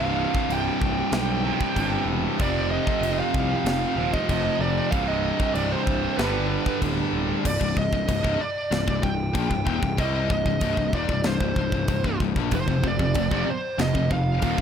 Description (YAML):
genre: heavy metal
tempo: 95 BPM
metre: 4/4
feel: straight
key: C minor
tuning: A4 = 444 Hz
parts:
  - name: high-gain lead guitar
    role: melody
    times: 0.0-14.6 s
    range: B4 to G5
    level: -28 LUFS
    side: right 3 dB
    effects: distortion, tape echo
  - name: heavy high-gain guitar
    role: riff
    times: 0.0-7.4, 12.5-14.6 s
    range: C2 to G3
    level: -28 LUFS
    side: right 12 dB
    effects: distortion
  - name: scooped high-gain guitar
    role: riff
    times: 0.0-14.6 s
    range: C2 to C4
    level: -28 LUFS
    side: left 13 dB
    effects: distortion
  - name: fuzz picked electric bass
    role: bass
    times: 0.0-14.6 s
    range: C1 to C2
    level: -28 LUFS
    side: equal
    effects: overdrive
  - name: tight metal drum kit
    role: drums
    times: 0.3-14.6 s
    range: crash cymbal, kick drum, snare drum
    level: -29 LUFS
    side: equal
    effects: none
room: small room reverb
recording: none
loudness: -21 LUFS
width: side -8 dB against mid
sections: 0.0-7.5 A section; 7.5-14.6 B section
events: none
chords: 0.0 C5; 2.4 F5; 4.9 C5; 6.2 G; 7.5 Cm; 12.5 F5